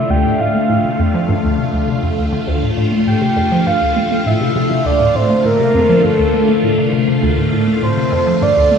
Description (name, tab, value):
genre	ambient, sequencer-driven space music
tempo	101 BPM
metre	4/4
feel	straight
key	D minor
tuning	A4 = 438 Hz
part	soft octave-layered synth lead	melody	0.0-8.8 s	A4 to G5	-17 LUFS	right 1 dB	chorus, cassette tape, analog delay
part	phased string machine	sustained chords	0.0-8.8 s	D3 to F4	-17 LUFS	left 1 dB	ensemble chorus, phaser
part	hollow square pluck	riff	0.0-8.8 s	D2 to A3	-17 LUFS	equal	chorus, analog delay
room	wet huge ambient reverb, RT60 7.7 s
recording	small room ambience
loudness	-12 LUFS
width	side -6 dB against mid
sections	0.0-8.8 A section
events	filter sweep on synth arpeggio sound 0.0-8.8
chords	0.0 Dmadd9